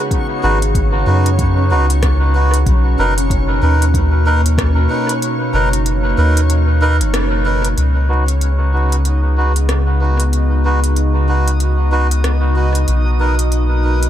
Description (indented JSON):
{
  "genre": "ambient dub",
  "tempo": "94 BPM",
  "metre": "4/4",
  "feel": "swing 60% on 16ths",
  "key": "unclear",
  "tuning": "A4 = 436 Hz",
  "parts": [
    { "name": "warbly tape-like pad", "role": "sustained chords", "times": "0.0-14.1 s", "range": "Cb3 to Gb4", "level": "-22 LUFS", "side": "right 1 dB", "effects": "chorus, built-in reverb" },
    { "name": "concert harp", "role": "arpeggios", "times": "0.0-8.5 s", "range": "Ab3 to Cb6", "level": "-32 LUFS", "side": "left 2 dB", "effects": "none" },
    { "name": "melodica", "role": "stabs", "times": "0.0-14.1 s", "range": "Eb4 to Cb5", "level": "-20 LUFS", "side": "right 1 dB", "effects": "low-pass filter, dub echo" },
    { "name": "backwards swelling texture", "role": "texture", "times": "0.0-14.1 s", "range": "Db4 to Eb5", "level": "-26 LUFS", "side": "left 1 dB", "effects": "built-in reverb" },
    { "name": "electronic kick drum", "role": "drums", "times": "0.1-4.7 s", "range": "none", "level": "-18 LUFS", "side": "equal", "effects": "overdrive" },
    { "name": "organic electronic drum kit", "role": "drums", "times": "0.1-14.1 s", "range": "hi-hat, rim click", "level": "-25 LUFS", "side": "equal", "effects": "overdrive, dub echo" },
    { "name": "soft dub sub bass", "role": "bass", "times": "0.4-14.1 s", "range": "Gb1 to Gb2", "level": "-14 LUFS", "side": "equal", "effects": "tube saturation" }
  ],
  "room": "light reverb, digital ambience",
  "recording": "none",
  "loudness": "-12 LUFS",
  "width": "side -11 dB against mid",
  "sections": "0.0-7.8 A section; 7.8-14.1 B section",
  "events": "kick drops out 5.2-7.8; band accent 7.1-7.5",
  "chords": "0.0 Db9sus4; 2.7 Cbmaj7; 7.8 Db9sus4; 12.9 Cbmaj7"
}